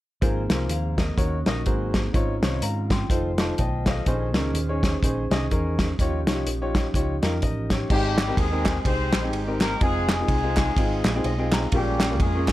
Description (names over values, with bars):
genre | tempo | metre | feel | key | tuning
uptempo gospel | 125 BPM | 4/4 | swing 59% on 8ths | Ab major | A4 = 436 Hz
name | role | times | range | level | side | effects
clear upright piano | accompaniment | 0.2-12.5 s | Ab2 to C6 | -28 LUFS | left 2 dB | none
mellow tonewheel organ | sustained chords | 0.2-12.5 s | Eb3 to C6 | -33 LUFS | right 2 dB | slow rotary speaker
hollow-body short-scale fingered electric bass | bass | 0.2-12.5 s | F1 to Ab2 | -27 LUFS | equal | none
warm soul drum kit | drums | 0.2-12.5 s | crash cymbal, hi-hat, kick drum, ride cymbal, snare drum | -24 LUFS | equal | none
dark horn section | melody | 7.9-12.5 s | G3 to C5 | -28 LUFS | left 1 dB | none
group handclap | percussion | 8.2-12.5 s | none | -34 LUFS | right 4 dB | none
room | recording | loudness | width
small room ambience | dark, warm production | -21 LUFS | side -15 dB against mid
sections
0.2-7.9 A section; 7.9-12.5 B section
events
upright piano fill 3.1-4.1, 11.0-11.7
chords
0.2 Ab69; 1.2 Ebm7; 1.7 Ab9; 2.1 Dbmaj9/Ab; 3.1 F7; 4.1 Bbm11; 6.0 Eb9; 7.9 Abmaj7; 9.8 Fm7; 11.7 Bbm7